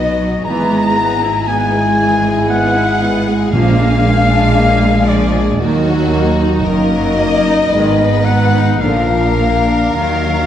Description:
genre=classical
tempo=52-60 BPM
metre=3/4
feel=rubato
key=Eb minor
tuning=A4 = 439 Hz
part: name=clear studio violin section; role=melody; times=0.0-10.5 s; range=Gb4 to Cb5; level=-24 LUFS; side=left 5 dB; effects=none
part: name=mellow clarinet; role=second line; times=0.0-10.5 s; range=D5 to Bb5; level=-18 LUFS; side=left 3 dB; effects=none
part: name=rich studio violin section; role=second line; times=0.0-10.5 s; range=D5 to Bb5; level=-22 LUFS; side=left 3 dB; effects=none
part: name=clear studio viola section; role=accompaniment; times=0.0-10.5 s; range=D3 to E4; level=-20 LUFS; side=right 2 dB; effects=none
part: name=warm French horn section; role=sustained chords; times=0.0-10.5 s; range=Gb3 to Gb4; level=-18 LUFS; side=left 2 dB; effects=none
part: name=rich studio double bass section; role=bass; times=0.0-10.5 s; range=Gb1 to Eb2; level=-18 LUFS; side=right 3 dB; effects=none
part: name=warm studio cello section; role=bass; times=0.0-10.5 s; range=Eb2 to Eb3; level=-20 LUFS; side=right 2 dB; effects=none
part: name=timpani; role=percussion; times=3.5-5.0 s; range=Bb2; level=-19 LUFS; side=equal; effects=none
room=wet concert hall reverb, RT60 1.8 s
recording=dark, warm production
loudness=-11 LUFS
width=side -10 dB against mid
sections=0.0-10.5 A section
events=none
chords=0.4 E/G#; 3.5 Bb7; 5.6 Ebm; 6.7 Ebm/Gb; 7.7 Abm; 8.8 Bb; 9.9 Ebm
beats=| 0.45 1.47 2.49 | 3.53 4.57 5.60 | 6.65 7.71 8.80 | 9.94

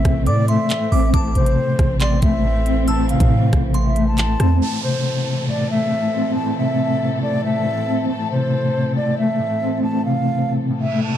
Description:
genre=hip hop, drill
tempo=138 BPM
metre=4/4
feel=half-time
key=A minor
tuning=A4 = 440 Hz
part: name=breathy concert flute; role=melody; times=0.0-11.2 s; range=C5 to A5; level=-24 LUFS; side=equal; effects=digital delay
part: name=mellow electric guitar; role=accompaniment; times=0.0-11.2 s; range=A2 to C4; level=-20 LUFS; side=left 1 dB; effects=tremolo
part: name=dark studio string section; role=sustained chords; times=0.0-11.2 s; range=A2 to A4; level=-28 LUFS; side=equal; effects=none
part: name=hard-hitting 808-style bass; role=bass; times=0.0-4.6 s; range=A1 to A2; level=-18 LUFS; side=right 1 dB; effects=none
part: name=drill drum kit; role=drums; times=0.1-4.5 s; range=handclaps, hi-hat, kick drum, rim click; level=-20 LUFS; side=equal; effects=none
part: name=glassy synth bell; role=second line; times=0.3-4.6 s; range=C6 to E6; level=-30 LUFS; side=right 1 dB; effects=chorus, phaser, digital delay
part: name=downlifter and reverse cymbal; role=sound effects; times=4.6-11.2 s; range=none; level=-32 LUFS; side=right 4 dB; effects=none
room=digital ambience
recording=dark, warm production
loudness=-16 LUFS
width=side -11 dB against mid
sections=0.0-4.6 A section; 4.6-11.2 B section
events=reverse cymbal 10.8-11.2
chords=0.0 Am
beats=0.27 0.70 | 1.14 1.57 2.01 2.44 | 2.88 3.31 3.75 4.18 | 4.62 5.05 5.49 5.92 | 6.36 6.79 7.22 7.66 | 8.09 8.53 8.96 9.40 | 9.83 10.27 10.70 11.14

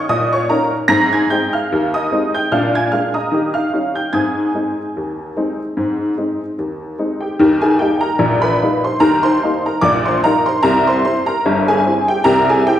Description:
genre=ragtime piano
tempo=74 BPM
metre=2/4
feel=swing 56% on 16ths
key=Ab major, Eb major from 7.4 s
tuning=A4 = 440 Hz
part: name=honky-tonk upright piano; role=solo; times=0.0-12.8 s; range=G1 to Bb6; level=-14 LUFS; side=equal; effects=none
room=wet recital hall reverb, RT60 1.7 s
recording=recorded in a church or concert hall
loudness=-14 LUFS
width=side -11 dB against mid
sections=0.0-7.4 A section; 7.4-12.8 B section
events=none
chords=0.0 Eb7(no3); 0.9 Ab; 2.5 Bb7; 3.3 Eb7; 4.1 Ab; 7.4 Eb; 10.6 C7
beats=0.10 | 0.90 1.71 | 2.52 3.33 | 4.14 4.96 | 5.78 6.59 | 7.41 8.22 | 9.03 9.84 | 10.65 11.46 | 12.27

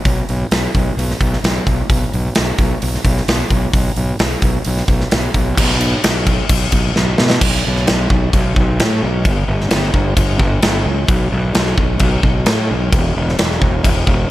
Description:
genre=hard rock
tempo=131 BPM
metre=4/4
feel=straight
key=unclear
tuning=A4 = 441 Hz
part: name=fuzz fingered electric bass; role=bass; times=0.1-14.3 s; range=E1 to B2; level=-17 LUFS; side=equal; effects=overdrive
part: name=big rock drum kit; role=drums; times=0.1-14.2 s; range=crash cymbal, hi-hat, kick drum, snare drum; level=-15 LUFS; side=equal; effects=none
room=little or no reverb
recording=none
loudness=-13 LUFS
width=side -15 dB against mid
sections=0.0-5.6 A section; 5.6-7.4 B section; 7.4-14.3 C section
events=drum fill 7.0-7.4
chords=none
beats=| 0.05 0.52 0.97 1.44 | 1.90 2.36 2.82 3.28 | 3.74 4.20 4.66 5.12 | 5.58 6.04 6.50 6.96 | 7.42 7.87 8.33 8.79 | 9.25 9.71 10.17 10.63 | 11.09 11.54 12.00 12.46 | 12.92 13.38 13.84

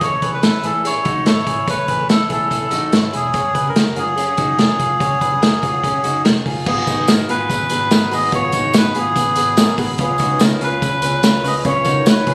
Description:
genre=jangly indie pop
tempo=144 BPM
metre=4/4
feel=straight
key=G# dorian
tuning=A4 = 440 Hz
part: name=melodica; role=melody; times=0.0-12.3 s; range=F#4 to D#5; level=-21 LUFS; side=equal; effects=none
part: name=picked twelve-string acoustic guitar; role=accompaniment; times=0.0-12.3 s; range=G#2 to C#5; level=-32 LUFS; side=equal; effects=none
part: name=electric guitar through a small old amp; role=arpeggios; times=0.0-12.3 s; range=B3 to C#5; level=-27 LUFS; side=equal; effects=none
part: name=vintage muted picked electric bass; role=bass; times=0.0-12.3 s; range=E1 to C#2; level=-28 LUFS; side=equal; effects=none
part: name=vintage drum kit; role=drums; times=0.0-12.3 s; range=crash cymbal, hi-hat, kick drum, snare drum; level=-20 LUFS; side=equal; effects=none
part: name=warm upright piano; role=accompaniment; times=6.7-12.3 s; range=B3 to C#5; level=-26 LUFS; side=equal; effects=none
part: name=tambourine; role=percussion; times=6.9-12.2 s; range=none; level=-34 LUFS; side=equal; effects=none
room=small room ambience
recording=recorded on a phone in the room, studio reverb, compression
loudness=-17 LUFS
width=mono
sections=0.0-6.7 A section; 6.7-12.3 B section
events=none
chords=0.0 Aadd9; 3.3 F#sus2; 6.7 G#m7; 10.0 C#7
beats=| 0.02 0.43 0.85 1.26 | 1.68 2.10 2.51 2.93 | 3.35 3.76 4.18 4.59 | 5.01 5.42 5.84 6.25 | 6.67 7.08 7.50 7.91 | 8.33 8.74 9.16 9.57 | 9.99 10.40 10.82 11.23 | 11.64 12.06

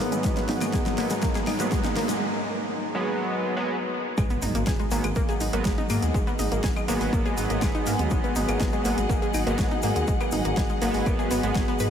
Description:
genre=melodic techno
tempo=122 BPM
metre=4/4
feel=straight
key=G# minor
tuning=A4 = 439 Hz
part: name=lush unison pad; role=sustained chords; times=0.0-11.9 s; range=F#3 to G#4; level=-34 LUFS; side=right 1 dB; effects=chorus, sidechain pumping
part: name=wide unison pluck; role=arpeggios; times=0.0-11.9 s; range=G#3 to B4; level=-29 LUFS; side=left 1 dB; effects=cassette tape, sidechain pumping, ping-pong delay
part: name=sync-sweep polysynth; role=stabs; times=0.0-11.6 s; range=F#3 to B3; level=-30 LUFS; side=right 1 dB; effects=chorus, sidechain pumping, ping-pong delay
part: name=analog drone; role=drone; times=0.0-2.2 s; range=G#2 to D#3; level=-42 LUFS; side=left 2 dB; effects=chorus, sidechain pumping
part: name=deep house drum kit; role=drums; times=0.0-11.9 s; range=claves, hi-hat, snare drum, toms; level=-33 LUFS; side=equal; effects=overdrive, sidechain pumping on hats, studio reverb, sidechain pumping on toms, sidechain pumping on perc
part: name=riser and impact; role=sound effects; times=0.1-6.1 s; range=none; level=-36 LUFS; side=equal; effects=none
part: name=dark studio string section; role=texture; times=0.0-11.9 s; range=B3 to F#5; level=-35 LUFS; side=left 2 dB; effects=sidechain pumping
part: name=tube shaker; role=percussion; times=0.1-11.9 s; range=none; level=-41 LUFS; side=left 5 dB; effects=none
part: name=electronic kick drum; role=drums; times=0.2-11.7 s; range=none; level=-27 LUFS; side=equal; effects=overdrive, studio reverb
part: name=dark detuned saw bass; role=bass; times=4.2-11.9 s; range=G#1 to G#2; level=-30 LUFS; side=equal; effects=sidechain pumping
room=wet huge ambient reverb, RT60 7.6 s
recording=dreamy mix soaked in reverb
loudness=-23 LUFS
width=side -8 dB against mid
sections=0.0-4.2 A section; 4.2-11.9 B section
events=build-up 0.0-4.2; drum fill 0.0-2.2; filter sweep on synth arpeggio sound 0.0-4.2; filter sweep on analog polysynth 0.0-4.2; break 2.2-4.2; drop 4.2-11.9; impact 4.2-6.1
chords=0.0 G#m7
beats=| 0.24 0.73 1.23 1.72 | 2.21 2.70 3.19 3.69 | 4.18 4.67 5.16 5.65 | 6.14 6.64 7.13 7.62 | 8.11 8.60 9.10 9.59 | 10.08 10.57 11.06 11.55

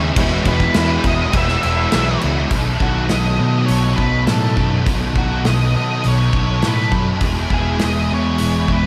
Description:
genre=rock, shoegaze and dream pop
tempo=102 BPM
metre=4/4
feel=straight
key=unclear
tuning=A4 = 440 Hz
part: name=biting overdriven guitar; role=riff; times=0.0-2.5 s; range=E2 to C#4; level=-28 LUFS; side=equal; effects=none
part: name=crunchy overdriven guitar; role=riff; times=0.0-8.9 s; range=B2 to A4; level=-24 LUFS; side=equal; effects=reverse reverb
part: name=overdriven electric guitar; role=riff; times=0.0-8.9 s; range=B2 to A4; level=-24 LUFS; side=equal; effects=ensemble chorus
part: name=fingered electric bass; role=bass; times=0.0-8.9 s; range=E1 to B2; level=-23 LUFS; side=equal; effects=none
part: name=loose indie drum kit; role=drums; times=0.2-8.8 s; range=crash cymbal, hi-hat, kick drum, snare drum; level=-24 LUFS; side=equal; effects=none
part: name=octave-fuzz lead guitar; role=melody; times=0.5-8.9 s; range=F#4 to E5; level=-26 LUFS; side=equal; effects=distortion, delay
room=moderate huge ambient reverb, RT60 8.3 s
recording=dreamy mix soaked in reverb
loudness=-17 LUFS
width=mono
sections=0.0-2.5 A section; 2.5-8.9 B section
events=none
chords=0.2 E; 2.5 B7; 7.2 E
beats=| 0.17 0.76 1.34 1.93 | 2.52 3.10 3.69 4.28 | 4.87 5.46 6.04 6.63 | 7.22 7.81 8.40

